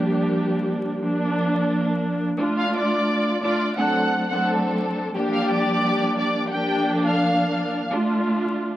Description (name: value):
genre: hip hop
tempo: 87 BPM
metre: 4/4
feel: swing 55% on 16ths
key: D minor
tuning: A4 = 440 Hz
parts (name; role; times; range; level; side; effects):
- dark studio string section; accompaniment; 0.0-8.8 s; F3 to A4; -21 LUFS; equal; high-pass filter, low-pass filter
- warm studio violin section; melody; 2.6-7.9 s; G4 to F#6; -24 LUFS; left 1 dB; high-pass filter, low-pass filter
room: moderate plate reverb, RT60 2.2 s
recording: dark, warm production, vinyl crackle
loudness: -20 LUFS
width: side -14 dB against mid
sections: 0.0-2.4 A section; 2.4-8.8 B section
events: none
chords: 0.0 Gm7; 1.0 Bb; 2.4 Dm; 3.8 D7; 5.2 Gm7; 7.9 Dm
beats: 0.32 1.01 1.70 | 2.39 3.08 3.77 4.46 | 5.15 5.84 6.53 7.22 | 7.91 8.60